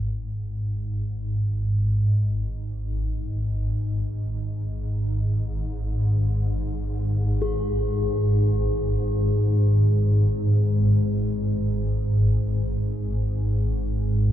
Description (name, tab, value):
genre	dark ambient drone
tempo	free time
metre	none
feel	none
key	unclear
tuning	A4 = 440 Hz
part	swarming drone	drone	0.0-14.3 s	G#1 to G#2	-22 LUFS	equal	built-in reverb
part	bronze singing bowl	texture	7.4-14.3 s	G#4	-30 LUFS	left 2 dB	none
room	wet cathedral reverb, RT60 7.3 s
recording	none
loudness	-22 LUFS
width	side -11 dB against mid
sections	0.0-14.3 A section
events	filter sweep on synth drone 0.0-14.3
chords	none